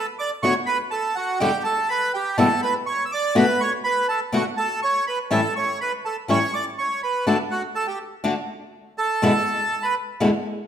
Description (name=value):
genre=tango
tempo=123 BPM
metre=4/4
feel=rubato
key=D major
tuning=A4 = 440 Hz
part: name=bandoneon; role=melody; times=0.0-10.0 s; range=F#4 to E6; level=-22 LUFS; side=right 2 dB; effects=none
part: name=flamenco guitar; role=accompaniment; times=0.4-10.3 s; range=E2 to F#4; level=-22 LUFS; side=left 2 dB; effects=none
room=wet recital hall reverb, RT60 1.5 s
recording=minimal, uncompressed stereo recording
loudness=-20 LUFS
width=side -9 dB against mid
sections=0.0-10.7 A section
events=none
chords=0.0 D6; 1.4 Em7; 3.4 Bm7; 5.3 A7; 7.3 D; 9.2 E7